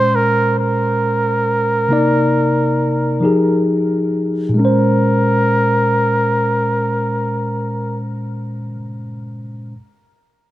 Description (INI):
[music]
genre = R&B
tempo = 45 BPM (dotted quarters)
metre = 6/8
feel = straight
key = Bb dorian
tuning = A4 = 440 Hz
[part]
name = clear flugelhorn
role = melody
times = 0.0-8.0 s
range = Bb4 to C5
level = -18 LUFS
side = right 1 dB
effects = ping-pong delay
[part]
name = mellow tine electric piano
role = accompaniment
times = 0.0-9.7 s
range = Bb2 to D5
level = -17 LUFS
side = left 1 dB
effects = none
[sound]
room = light reverb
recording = none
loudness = -14 LUFS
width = side -14 dB against mid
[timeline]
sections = 0.0-4.6 A section; 4.6-7.2 B section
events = none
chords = 0.0 Bbm9; 1.9 Cm9; 3.2 Fm9; 4.6 Bbm9